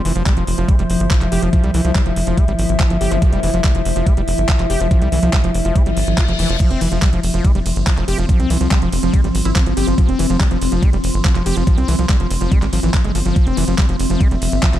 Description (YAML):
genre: psychedelic trance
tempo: 142 BPM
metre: 4/4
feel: straight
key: unclear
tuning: A4 = 440 Hz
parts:
  - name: swarming drone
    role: sustained chords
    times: 0.0-14.8 s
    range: F3 to E4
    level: -24 LUFS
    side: equal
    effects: built-in reverb, sidechain pumping
  - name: warbly tape-like pad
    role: texture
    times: 0.0-14.8 s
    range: F3 to C6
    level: -25 LUFS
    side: left 2 dB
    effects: chorus, built-in reverb, sidechain pumping
  - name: overdriven acid bass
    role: riff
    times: 0.1-14.8 s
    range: E3 to G4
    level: -23 LUFS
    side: equal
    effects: distortion, auto-pan, sidechain pumping, digital delay
  - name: tight sequencer bass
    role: bass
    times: 0.1-14.8 s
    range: F1 to C2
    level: -19 LUFS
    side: equal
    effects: tube saturation
  - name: garage drum kit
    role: drums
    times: 0.1-14.8 s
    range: crash cymbal, handclaps, hi-hat, ride cymbal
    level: -25 LUFS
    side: right 1 dB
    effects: studio reverb
  - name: electronic kick drum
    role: drums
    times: 0.3-14.7 s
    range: none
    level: -14 LUFS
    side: equal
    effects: studio reverb
  - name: resonant blip pluck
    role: second line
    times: 2.0-2.1, 8.7-10.0 s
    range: C4 to E4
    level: -34 LUFS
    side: left 3 dB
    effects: none
  - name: zap and reverse cymbal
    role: sound effects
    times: 3.1-3.2, 5.9-6.6 s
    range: none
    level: -28 LUFS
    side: left 4 dB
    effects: none
room: little or no reverb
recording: dark, warm production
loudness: -14 LUFS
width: side -12 dB against mid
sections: 0.0-14.8 A section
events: reverse cymbal 5.9-6.6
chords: 0.0 F5